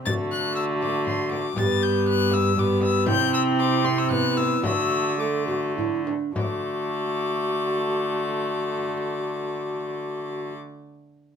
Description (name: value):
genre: classical, renaissance-style consort dance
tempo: 101-120 BPM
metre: 3/4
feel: straight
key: D mixolydian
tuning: A4 = 440 Hz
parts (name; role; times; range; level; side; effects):
- warm violin; melody; 0.1-10.6 s; C6 to A6; -29 LUFS; left 8 dB; none
- mellow hollow tenor recorder; second line; 0.1-10.5 s; D4 to A4; -27 LUFS; right 1 dB; none
- warm viola; accompaniment; 0.1-10.5 s; A3 to C4; -28 LUFS; left 2 dB; none
- rich cello; bass; 0.1-10.5 s; G2 to D3; -28 LUFS; right 3 dB; none
- frame drum; percussion; 0.1-6.6 s; none; -31 LUFS; left 2 dB; none
room: moderate stone room reverb, RT60 0.9 s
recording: none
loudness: -22 LUFS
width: side -7 dB against mid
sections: 0.0-6.4 A section; 6.4-9.9 B section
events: slowing down 2.3-6.4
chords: 0.1 D; 1.6 G; 3.1 C; 4.6 D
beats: | 0.06 0.56 1.07 | 1.57 2.07 2.57 | 3.08 3.59 4.11 | 4.65 5.20 5.77 | 6.36 6.95 7.55 | 8.14 8.74 9.33